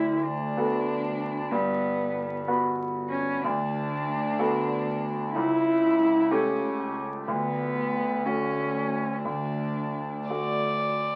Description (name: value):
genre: neoclassical piano and strings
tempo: 62 BPM (dotted quarters)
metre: 6/8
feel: rubato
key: D major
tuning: A4 = 439 Hz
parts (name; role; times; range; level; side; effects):
- warm cello; second line; 0.0-10.3 s; B3 to E4; -30 LUFS; equal; none
- clear concert grand piano; accompaniment; 0.0-11.2 s; C#2 to B4; -30 LUFS; equal; none
- dark double bass; bass; 0.0-11.2 s; G1 to D2; -38 LUFS; equal; none
- rich violin; melody; 10.3-11.2 s; D5; -29 LUFS; equal; none
room: moderate club reverb, RT60 0.6 s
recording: very old 78 rpm record, vinyl crackle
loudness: -27 LUFS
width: mono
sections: 0.0-11.2 A section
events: none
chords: 0.0 D6; 1.5 Gmaj7; 3.4 D6; 5.4 A7/C#; 7.3 D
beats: 0.57 | 1.52 2.48 | 3.43 4.39 | 5.35 6.31 | 7.28 8.26 | 9.26 10.29